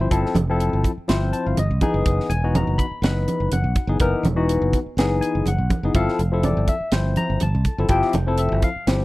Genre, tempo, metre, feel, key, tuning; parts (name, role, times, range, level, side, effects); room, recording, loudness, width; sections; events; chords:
electric jazz fusion; 123 BPM; 4/4; swing 54% on 16ths; A4 = 439 Hz
barky tine electric piano; accompaniment; 0.0-9.0 s; E3 to B5; -23 LUFS; left 3 dB; phaser
fingered electric bass; bass; 0.0-9.0 s; E1 to C2; -22 LUFS; right 1 dB
crisp fusion drum kit; drums; 0.1-9.0 s; hi-hat, kick drum, snare drum; -23 LUFS; right 1 dB
congas; percussion; 0.1-8.9 s; -26 LUFS; right 2 dB
studio reverb; dry, close 1970s-style studio recording; -18 LUFS; side -18 dB against mid
0.0-9.0 A section
tine electric piano fill 1.1-2.1
0.0 G13sus4; 1.8 F#13sus4; 6.0 G13sus4